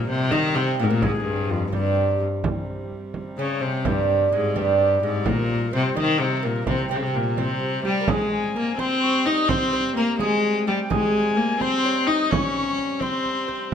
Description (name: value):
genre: medieval dance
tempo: 85 BPM (dotted quarters)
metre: 6/8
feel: straight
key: C phrygian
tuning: A4 = 440 Hz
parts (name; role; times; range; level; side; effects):
- clear viola da gamba; melody; 0.0-13.7 s; F2 to Eb4; -22 LUFS; left 2 dB; none
- lute; second line; 0.0-13.7 s; G3 to Eb5; -27 LUFS; right 6 dB; none
- mellow alto recorder; second line; 0.0-13.7 s; F4 to Eb6; -30 LUFS; left 4 dB; none
- dark hurdy-gurdy; drone; 0.0-13.7 s; C3 to G3; -34 LUFS; right 4 dB; none
- frame drum; percussion; 0.1-13.6 s; none; -29 LUFS; right 4 dB; none
room: wet recital hall reverb, RT60 1.5 s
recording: close, detailed microphones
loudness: -20 LUFS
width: side -8 dB against mid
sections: 0.0-8.1 A section; 8.1-13.7 B section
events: none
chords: none